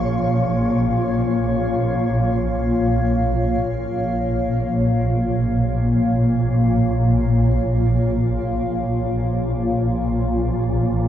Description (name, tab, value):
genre	dark ambient drone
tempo	free time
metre	none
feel	none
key	Bb minor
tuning	A4 = 440 Hz
part	granular cloud pad	sustained chords	0.0-11.1 s	Bb3 to F5	-21 LUFS	left 1 dB	built-in reverb
part	swarming drone	drone	0.0-11.1 s	Bb1 to Bb2	-20 LUFS	equal	built-in reverb
part	wind-like tuned noise texture	texture	0.0-2.0 s	Db4 to Db5	-33 LUFS	left 1 dB	built-in reverb
room	wet echo chamber reverb, RT60 2.3 s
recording	cassette tape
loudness	-17 LUFS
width	side -10 dB against mid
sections	0.0-2.0 A section; 2.0-11.1 A section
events	none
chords	0.0 Bbm